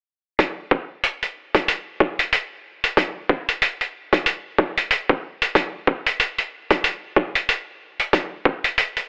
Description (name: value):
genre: glitch hop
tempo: 93 BPM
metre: 4/4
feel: swing 58% on 16ths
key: none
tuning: none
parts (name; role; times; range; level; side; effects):
- electronic hi-hat; drums; 0.4-9.1 s; none; -23 LUFS; equal; overdrive, studio reverb
- electronic kick drum; drums; 0.4-8.6 s; none; -21 LUFS; equal; overdrive, high-pass filter on kick, studio reverb
room: little or no reverb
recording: telephone sound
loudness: -22 LUFS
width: mono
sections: 0.4-9.1 A section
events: none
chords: none